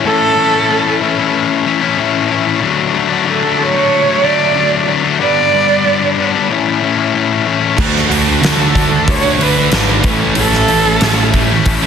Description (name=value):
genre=quiet-loud alternative rock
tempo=93 BPM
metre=4/4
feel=straight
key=A mixolydian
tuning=A4 = 440 Hz
part: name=dark cello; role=melody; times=0.0-11.6 s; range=A4 to D5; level=-15 LUFS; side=right 4 dB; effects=tape echo
part: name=fuzz guitar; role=riff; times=0.0-11.9 s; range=G2 to A4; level=-14 LUFS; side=left 8 dB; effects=distortion
part: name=heavy high-gain guitar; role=riff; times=7.8-11.9 s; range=A2 to D4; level=-20 LUFS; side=right 2 dB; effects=distortion
part: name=thick fuzz guitar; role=riff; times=7.8-11.9 s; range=A2 to F#4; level=-18 LUFS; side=right 13 dB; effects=distortion
part: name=fuzz picked electric bass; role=bass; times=7.8-11.9 s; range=G#1 to D2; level=-17 LUFS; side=equal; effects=overdrive
part: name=huge arena drum kit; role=drums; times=7.8-11.8 s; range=crash cymbal, hi-hat, kick drum, snare drum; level=-16 LUFS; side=equal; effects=none
room=light reverb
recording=dense, heavily limited modern master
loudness=-10 LUFS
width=side -7 dB against mid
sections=0.0-11.9 A section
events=none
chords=0.0 A; 2.6 D; 5.2 G; 6.5 A; 7.8 D; 10.0 A